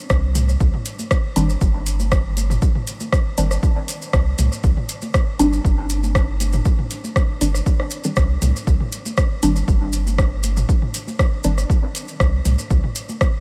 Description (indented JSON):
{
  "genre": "dub techno",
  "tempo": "119 BPM",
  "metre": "4/4",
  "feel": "straight",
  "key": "C minor",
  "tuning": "A4 = 440 Hz",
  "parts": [
    { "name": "soft dub sub bass", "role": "bass", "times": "0.1-12.8 s", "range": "G1 to C2", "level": "-22 LUFS", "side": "equal", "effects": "sidechain pumping" },
    { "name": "deep house drum kit", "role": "drums", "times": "0.1-13.3 s", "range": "hi-hat, rim click", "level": "-30 LUFS", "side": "equal", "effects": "dub echo" },
    { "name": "electronic kick drum", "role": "drums", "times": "0.1-13.3 s", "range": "none", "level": "-20 LUFS", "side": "equal", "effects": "none" },
    { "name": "maracas", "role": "percussion", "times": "0.1-13.3 s", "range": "none", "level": "-34 LUFS", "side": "equal", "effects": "none" },
    { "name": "electronic toms and congas", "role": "percussion", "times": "0.4-13.2 s", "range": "none", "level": "-32 LUFS", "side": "equal", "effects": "overdrive, sidechain pumping on toms, sidechain pumping on perc, dub echo" },
    { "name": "filtered dub chord stab", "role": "stabs", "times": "1.4-11.6 s", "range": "Eb3 to D4", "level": "-28 LUFS", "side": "equal", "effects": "phaser, sidechain pumping, dub echo" }
  ],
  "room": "light reverb",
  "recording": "none",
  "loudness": "-19 LUFS",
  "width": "mono",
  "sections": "0.0-13.4 A section",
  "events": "none",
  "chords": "0.0 C5",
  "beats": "0.10 | 0.60 1.11 1.61 2.12 | 2.62 3.12 3.63 4.13 | 4.64 5.14 5.65 6.15 | 6.66 7.16 7.66 8.17 | 8.67 9.18 9.68 10.18 | 10.69 11.19 11.70 12.20 | 12.71 13.21"
}